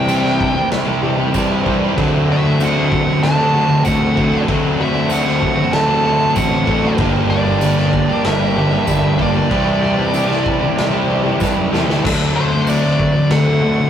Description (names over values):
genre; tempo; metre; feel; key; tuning
rock, shoegaze and dream pop; 95 BPM; 4/4; straight; D mixolydian; A4 = 440 Hz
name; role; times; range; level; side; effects
nasal lead guitar with a parked wah; melody; 0.0-13.9 s; C5 to A5; -20 LUFS; right 1 dB; overdrive
direct-recorded clean electric guitar; arpeggios; 0.0-13.9 s; E3 to G4; -25 LUFS; left 4 dB; none
overdriven electric guitar; riff; 0.0-13.9 s; G2 to A4; -23 LUFS; equal; none
overdriven semi-hollow guitar; riff; 0.0-12.0 s; G2 to G4; -20 LUFS; right 3 dB; none
thick fuzz guitar; riff; 0.0-13.9 s; G2 to D4; -20 LUFS; left 2 dB; distortion
fuzz fingered electric bass; bass; 0.0-13.8 s; G1 to G2; -20 LUFS; equal; overdrive
raw garage drum kit; drums; 0.1-13.5 s; crash cymbal, kick drum, snare drum; -23 LUFS; equal; none
tambourine; percussion; 0.1-12.8 s; none; -36 LUFS; right 6 dB; none
room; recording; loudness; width
wet booth ambience, RT60 0.2 s; rough rehearsal-room recording, tube saturation; -13 LUFS; side -9 dB against mid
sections
0.0-12.0 A section; 12.0-13.9 A section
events
drum fill 11.4-12.0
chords
0.0 Cadd9; 2.0 D7; 7.0 Gm; 9.5 Cadd9; 12.0 D7